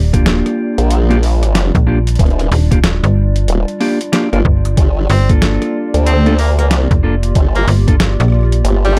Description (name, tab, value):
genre	glitch hop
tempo	93 BPM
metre	4/4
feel	swing 62% on 16ths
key	G minor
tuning	A4 = 441 Hz
part	warbly tape-like pad	sustained chords	0.0-9.0 s	G3 to D5	-26 LUFS	equal	chorus, built-in reverb, sidechain pumping
part	slap-like FM bass	bass	0.0-8.6 s	Eb1 to Bb1	-15 LUFS	equal	none
part	mellow electric guitar	stabs	0.1-9.0 s	Bb3 to Bb4	-20 LUFS	equal	sidechain pumping, tape echo
part	boom bap sampler-style drum kit	drums	0.1-9.0 s	hi-hat, rim click, snare drum	-22 LUFS	equal	none
part	electronic kick drum	drums	0.1-8.0 s	none	-15 LUFS	equal	none
part	formant-sweep wobble bass	bass	0.8-9.0 s	Eb1 to D2	-15 LUFS	equal	chorus, tube saturation
part	edgy tenor saxophone	melody	5.1-9.0 s	G3 to C4	-22 LUFS	equal	tape echo
room	little or no reverb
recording	none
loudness	-13 LUFS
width	mono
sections	0.0-9.0 A section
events	none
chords	0.0 Ebmaj9; 4.8 Gm7